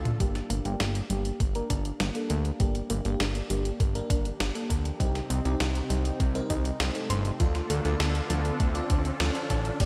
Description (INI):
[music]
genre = synthwave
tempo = 100 BPM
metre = 4/4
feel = straight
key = G minor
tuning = A4 = 440 Hz
[part]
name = brassy analog pad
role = sustained chords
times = 0.0-9.9 s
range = C3 to A4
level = -39 LUFS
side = equal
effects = chorus, sidechain pumping, shimmer reverb
[part]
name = analog pluck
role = arpeggios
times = 0.0-9.8 s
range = F3 to C5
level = -40 LUFS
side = equal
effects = chorus, delay, shimmer reverb
[part]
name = fat analog bass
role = bass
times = 0.0-9.9 s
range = G1 to D2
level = -32 LUFS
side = equal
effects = sidechain pumping
[part]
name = clean 12-bit digital drum machine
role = drums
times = 0.1-9.9 s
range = crash cymbal, hi-hat, snare drum, toms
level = -36 LUFS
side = equal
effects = high-pass filter on snare, high-pass filter on hats, high-pass filter on toms, high-pass filter on cymbals, high-pass filter on room
[part]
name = FM electric piano with soft pad layer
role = stabs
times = 0.2-9.9 s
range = Bb3 to D5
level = -38 LUFS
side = equal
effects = chorus, phaser, low-pass filter, delay, shimmer reverb
[part]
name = electronic kick drum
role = drums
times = 0.2-9.9 s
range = none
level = -30 LUFS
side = equal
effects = none
[part]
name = riser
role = sound effects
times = 4.4-9.8 s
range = none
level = -43 LUFS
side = equal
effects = none
[part]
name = expressive portamento lead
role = melody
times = 9.8-9.9 s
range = D5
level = -50 LUFS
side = equal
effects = none
[sound]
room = moderate lush hall reverb, RT60 2.2 s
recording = bright 1980s-style digital production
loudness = -28 LUFS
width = mono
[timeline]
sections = 0.2-9.8 A section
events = drum fill 0.0; filter sweep on analog synth pad 0.2-9.8; filter sweep on synth arpeggio sound 0.2-9.8; filter sweep on FM electric piano 0.2-9.8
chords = 0.2 Gm; 5.0 Cm; 7.4 Dm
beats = | 0.20 0.80 1.40 2.00 | 2.60 3.20 3.80 4.40 | 5.00 5.60 6.20 6.80 | 7.40 8.00 8.60 9.20 | 9.80